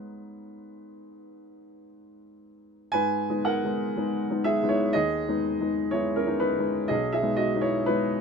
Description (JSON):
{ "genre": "classical, romantic nocturne for solo piano", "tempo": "54-63 BPM", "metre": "4/4", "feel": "rubato", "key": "G# minor", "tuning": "A4 = 441 Hz", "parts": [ { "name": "warm upright piano", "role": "solo", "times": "0.0-8.2 s", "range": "B1 to G#5", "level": "-25 LUFS", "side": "equal", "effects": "none" } ], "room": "little or no reverb", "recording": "close, detailed microphones", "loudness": "-24 LUFS", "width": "side -5 dB against mid", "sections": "0.0-2.9 A section; 2.9-8.2 A section", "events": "none", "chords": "0.0 G#m; 6.9 G#m/B" }